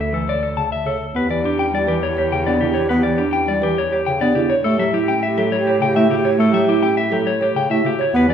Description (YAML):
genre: classical, minimalist pattern music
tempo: 103 BPM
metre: 3/4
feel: straight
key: E dorian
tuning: A4 = 440 Hz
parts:
  - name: clean electric guitar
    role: melody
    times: 0.0-8.3 s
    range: G4 to A5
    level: -20 LUFS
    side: left 6 dB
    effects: none
  - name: folk marimba with soft mallets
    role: arpeggios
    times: 0.0-8.3 s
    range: C#4 to C#5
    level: -22 LUFS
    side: right 5 dB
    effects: none
  - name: rich cello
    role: bass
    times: 0.0-8.3 s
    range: D2 to A2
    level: -25 LUFS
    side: right 2 dB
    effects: none
  - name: mellow bass clarinet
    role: accompaniment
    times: 0.1-8.3 s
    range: C#3 to B3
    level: -22 LUFS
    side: equal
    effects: none
  - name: alto flute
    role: second line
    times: 1.2-8.3 s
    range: G4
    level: -24 LUFS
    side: right 2 dB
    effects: none
room: wet large studio reverb, RT60 1.4 s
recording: heard from further back in the room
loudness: -16 LUFS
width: side -8 dB against mid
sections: 0.0-1.2 A section; 1.2-8.3 B section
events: none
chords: 0.0 Dmaj7(no3); 1.2 Em7; 4.6 A7